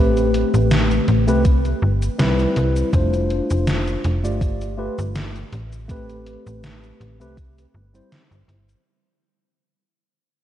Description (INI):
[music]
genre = vaporwave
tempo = 81 BPM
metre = 4/4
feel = swing 54% on 16ths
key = unclear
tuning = A4 = 441 Hz
[part]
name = mellow tine electric piano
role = accompaniment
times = 0.0-8.2 s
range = G3 to D5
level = -22 LUFS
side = left 1 dB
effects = medium stereo tremolo, wide subtle chorus, analog delay
[part]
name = slap-like FM bass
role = bass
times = 0.0-8.8 s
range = F1 to C2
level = -21 LUFS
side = equal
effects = none
[part]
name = gated 80s digital drum machine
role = drums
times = 0.2-8.8 s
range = cabasa, hi-hat, snare drum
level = -25 LUFS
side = equal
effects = gated reverb, gated reverb snare, overdrive
[part]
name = electronic kick drum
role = drums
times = 1.5-7.5 s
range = none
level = -18 LUFS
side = equal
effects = overdrive
[sound]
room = moderate lush hall reverb, RT60 3.0 s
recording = dreamy mix soaked in reverb, cassette tape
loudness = -17 LUFS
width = side -11 dB against mid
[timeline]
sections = 0.0-8.9 A section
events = fade-out 0.0-8.9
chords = 0.0 Am9; 1.4 Cmaj7; 2.9 F6; 4.4 G9; 5.5 Am9; 7.4 C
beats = 0.71 1.45 2.19 | 2.93 3.67 4.41 5.15 | 5.89 6.63 7.38 8.12